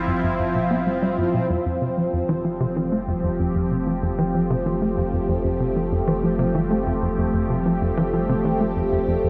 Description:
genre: ambient.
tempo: 95 BPM.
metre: 4/4.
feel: straight.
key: unclear.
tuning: A4 = 440 Hz.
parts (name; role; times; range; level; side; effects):
lush unison pad; sustained chords; 0.0-9.3 s; F3 to G4; -25 LUFS; equal; chorus, phaser.
warm sub bass; bass; 0.0-9.3 s; F1 to G1; -36 LUFS; equal; none.
tight sequencer bass; riff; 0.1-9.3 s; F2 to B3; -26 LUFS; equal; analog chorus, delay.
room: wet cathedral reverb, RT60 4.9 s.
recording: in a vast, echoing space.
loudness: -22 LUFS.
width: mono.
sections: 0.0-9.3 A section.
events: filter sweep on analog synth bass 0.0-9.3.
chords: 0.0 G7sus4; 1.5 Fadd9.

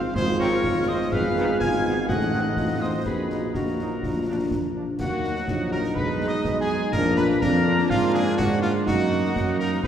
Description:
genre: military-style march for wind band.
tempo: 124 BPM.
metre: 2/4.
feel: straight.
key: Eb minor.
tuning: A4 = 440 Hz.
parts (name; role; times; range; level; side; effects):
warm cornet; melody; 0.0-9.9 s; F4 to Ab5; -31 LUFS; equal; none.
warm euphonium; second line; 0.0-9.9 s; Gb3 to Ab4; -29 LUFS; right 2 dB; none.
warm woodwind section; second line; 0.0-9.9 s; F4 to F5; -33 LUFS; left 1 dB; none.
mellow tuba; bass; 0.0-9.9 s; Ab1 to Ab2; -25 LUFS; right 1 dB; none.
piccolo; second line; 0.1-9.9 s; F5 to Ab6; -32 LUFS; left 2 dB; none.
concert snare drum, concert bass drum and clash cymbals; drums; 0.1-9.9 s; none; -31 LUFS; equal; none.
mellow French horn section; accompaniment; 0.4-9.9 s; Ab3 to A4; -31 LUFS; left 2 dB; none.
bright trombone section; sustained chords; 0.4-9.9 s; Eb3 to Eb4; -32 LUFS; right 1 dB; none.
room: wet scoring stage reverb, RT60 2.2 s.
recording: heard from further back in the room.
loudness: -21 LUFS.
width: side -9 dB against mid.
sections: 0.0-5.0 A section; 5.0-9.9 B section.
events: none.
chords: 0.0 Fm/Ab; 1.1 Fm7b5/Ab; 2.1 Adim7; 3.1 Ebm/Bb; 4.0 Bb; 5.0 Ebm; 6.0 Abm/Cb; 6.9 Bb; 7.9 Bb7/Ab; 8.9 Ebm/Gb.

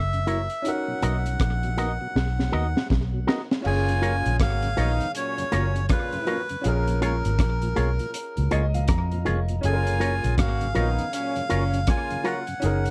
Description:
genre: lovers rock reggae.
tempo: 80 BPM.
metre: 4/4.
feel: swing 61% on 16ths.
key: F# major.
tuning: A4 = 441 Hz.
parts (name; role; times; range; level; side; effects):
melodica; melody; 0.0-12.9 s; A#4 to G#5; -32 LUFS; equal; tape echo.
clear concert grand piano; accompaniment; 0.0-12.9 s; C#4 to A#5; -35 LUFS; equal; slapback echo.
vintage muted fingered electric bass; bass; 0.0-12.9 s; E#1 to E#2; -27 LUFS; equal; none.
mellow tonewheel organ; accompaniment; 0.1-12.9 s; F#2 to E#4; -37 LUFS; equal; slow rotary speaker, slapback echo.
crunchy breakbeat drum kit; drums; 0.1-12.9 s; crash cymbal, hi-hat, kick drum, rim click, snare drum; -29 LUFS; equal; none.
electric guitar with an envelope filter; stabs; 0.3-12.4 s; E4 to D#5; -30 LUFS; equal; none.
clear horn section; second line; 3.7-12.4 s; A#2 to F#4; -34 LUFS; equal; none.
room: little or no reverb.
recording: dry, close 1970s-style studio recording.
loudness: -25 LUFS.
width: mono.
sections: 0.0-3.6 A section; 3.6-12.9 B section.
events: drum fill 2.1-3.6; grand piano fill 8.1-9.6.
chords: 0.0 F#7; 0.6 Bmaj7; 3.6 F#maj7; 6.6 A#m7; 9.6 F#maj7.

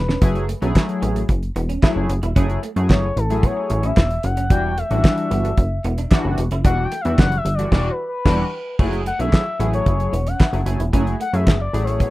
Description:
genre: early-eighties boogie funk.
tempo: 112 BPM.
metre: 4/4.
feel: straight.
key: F# minor.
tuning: A4 = 441 Hz.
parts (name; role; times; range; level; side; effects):
expressive synth lead; melody; 0.0-12.1 s; A4 to G5; -25 LUFS; left 3 dB; chorus.
plucky analog bass; bass; 0.0-12.1 s; E1 to F#2; -21 LUFS; equal; none.
semi-hollow electric guitar; riff; 0.1-12.1 s; A3 to E4; -30 LUFS; right 5 dB; ensemble chorus.
damped 70s drum kit; drums; 0.1-12.1 s; crash cymbal, handclaps, hi-hat, kick drum, snare drum; -16 LUFS; equal; none.
chorused polysynth; accompaniment; 0.2-12.1 s; E3 to G#4; -24 LUFS; left 1 dB; none.
room: little or no reverb.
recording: rough home demo mix.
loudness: -17 LUFS.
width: side -18 dB against mid.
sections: 0.0-8.8 A section; 8.8-12.1 B section.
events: drum fill 0.0; analog synth lead solo 0.0-8.8; band accent 7.7-8.8.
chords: 0.2 F#m9; 4.5 Em9; 8.8 F#m9.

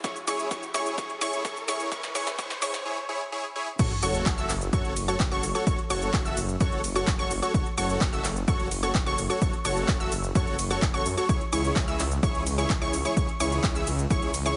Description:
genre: EDM, festival progressive house.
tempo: 128 BPM.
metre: 4/4.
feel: straight.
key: F# minor.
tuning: A4 = 440 Hz.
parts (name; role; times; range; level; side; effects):
unison pluck; arpeggios; 0.0-14.6 s; C#6 to E6; -35 LUFS; equal; subtle chorus, sidechain pumping, dub echo.
dense compressed supersaw; riff; 0.0-14.6 s; E4 to E5; -33 LUFS; equal; sidechain pumping, dub echo.
big-room dance drum kit; drums; 0.0-14.6 s; crash cymbal, handclaps, hi-hat, ride cymbal, shaker, snare drum; -35 LUFS; equal; overdrive, high-pass filter on hats, high-pass filter on perc, high-pass filter on snare, high-pass filter on cymbals, high-pass filter on room.
electronic kick drum; drums; 0.0-14.2 s; none; -29 LUFS; equal; overdrive.
riser and sub drop; sound effects; 0.2-5.7 s; none; -40 LUFS; equal; none.
detuned saw bass; bass; 3.8-14.5 s; F#1 to F#2; -34 LUFS; equal; sidechain pumping.
room: light reverb.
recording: heavily compressed radio sound, multiband compression, high-pass filter, nothing above 10.9 kHz.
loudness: -27 LUFS.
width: mono.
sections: 0.0-3.8 A section; 3.8-14.6 B section.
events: build-up 0.0-3.8; drum fill 0.0-2.9; riser 0.2-2.9; filter sweep on supersaw synth 0.0-3.8; drop 3.8-14.6; impact 3.8-5.7.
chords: 0.0 E6; 3.8 F#m; 11.3 C#m.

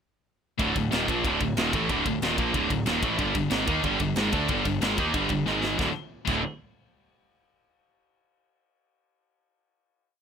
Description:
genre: heavy metal.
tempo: 185 BPM.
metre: 4/4.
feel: straight.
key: unclear.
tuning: A4 = 439 Hz.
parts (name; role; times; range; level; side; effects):
distorted electric guitar; riff; 0.6-6.4 s; D2 to Eb4; -27 LUFS; right 10 dB; overdrive.
scooped high-gain guitar; riff; 0.6-6.4 s; D2 to Eb4; -28 LUFS; left 12 dB; distortion.
fuzz picked electric bass; bass; 0.6-6.4 s; D1 to Eb2; -32 LUFS; left 1 dB; overdrive.
tight metal drum kit; drums; 0.6-6.4 s; crash cymbal, kick drum, ride cymbal, snare drum; -32 LUFS; left 1 dB; none.
room: light reverb.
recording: rough home demo mix.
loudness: -24 LUFS.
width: side -7 dB against mid.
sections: 0.6-5.8 riff; 5.8-7.1 final chord.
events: drum fill 5.5-5.8.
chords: 0.6 Dm; 3.2 G5; 5.5 G#5; 5.8 D5.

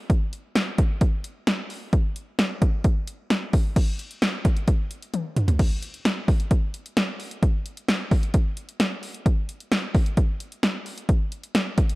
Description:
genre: pop.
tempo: 131 BPM.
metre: 4/4.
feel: straight.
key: none.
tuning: none.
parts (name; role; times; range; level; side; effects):
punchy analog drum machine; drums; 0.1-12.0 s; crash cymbal, hi-hat, kick drum, snare drum, toms; -21 LUFS; equal; overdrive.
room: digital ambience.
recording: dark, warm production.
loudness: -22 LUFS.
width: side -22 dB against mid.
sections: 0.0-3.8 A section; 3.8-5.6 B section; 5.6-12.0 C section.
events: drum fill 5.1-5.6.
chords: none.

